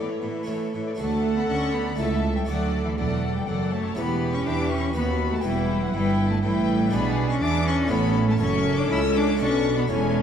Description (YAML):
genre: classical, baroque-style concerto movement with solo episodes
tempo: 121 BPM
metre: 3/4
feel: straight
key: D major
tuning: A4 = 441 Hz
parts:
  - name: bright cello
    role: melody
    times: 0.0-10.2 s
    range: E3 to E4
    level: -27 LUFS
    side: left 2 dB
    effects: none
  - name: dark chamber violin section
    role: melody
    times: 0.0-10.2 s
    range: C#5 to E6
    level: -34 LUFS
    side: left 6 dB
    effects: none
  - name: rich chamber violin section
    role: second line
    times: 0.0-10.2 s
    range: G#4 to F#5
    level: -30 LUFS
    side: left 6 dB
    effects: none
  - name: harpsichord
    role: accompaniment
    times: 0.0-10.2 s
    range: C#2 to D5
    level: -33 LUFS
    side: equal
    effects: none
  - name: rich chamber viola section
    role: accompaniment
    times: 0.0-10.2 s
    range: E3 to A4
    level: -31 LUFS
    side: equal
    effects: none
  - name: clear chamber cello section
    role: bass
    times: 0.0-10.2 s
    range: C#2 to E3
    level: -29 LUFS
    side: right 4 dB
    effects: none
  - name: rich chamber double bass section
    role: bass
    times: 1.0-10.2 s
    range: E1 to E2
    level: -28 LUFS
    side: right 4 dB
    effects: none
room: wet concert hall reverb, RT60 2.0 s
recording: dark, warm production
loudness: -21 LUFS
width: side -8 dB against mid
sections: 1.0-10.2 A section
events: none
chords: 0.5 A; 1.0 D; 2.0 A/C#; 2.5 D; 4.0 Em; 5.0 B/D#; 5.4 Em; 6.9 E7/B; 7.9 A; 8.4 F#m; 9.4 Bm7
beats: 0.48 | 0.99 1.49 1.99 | 2.48 2.98 3.47 | 3.97 4.46 4.95 | 5.44 5.94 6.43 | 6.93 7.42 7.91 | 8.41 8.91 9.40 | 9.90